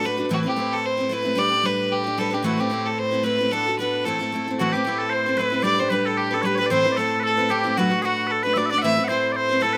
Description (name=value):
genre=celtic folk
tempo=225 BPM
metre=4/4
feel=swing 53% on 8ths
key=A dorian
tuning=A4 = 441 Hz
part: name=clear fiddle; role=melody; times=0.0-9.8 s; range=F#4 to E5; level=-25 LUFS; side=equal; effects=none
part: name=picked steel-string acoustic guitar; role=accompaniment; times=0.0-9.8 s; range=A2 to B4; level=-27 LUFS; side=equal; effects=none
part: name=warm cello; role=drone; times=0.0-9.8 s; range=A2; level=-38 LUFS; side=equal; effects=none
part: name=mellow small bagpipes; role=second line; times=4.6-9.8 s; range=F#4 to F#5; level=-27 LUFS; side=equal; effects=none
room=little or no reverb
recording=recorded outdoors, with no room sound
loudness=-22 LUFS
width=mono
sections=0.0-4.6 A section; 4.6-9.8 A section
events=none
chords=0.3 Amadd9; 1.4 G; 2.4 Amadd9; 3.5 Bm7; 4.0 Am; 4.6 Amadd9; 5.6 G; 6.7 Amadd9; 7.8 Bm7; 8.8 Amadd9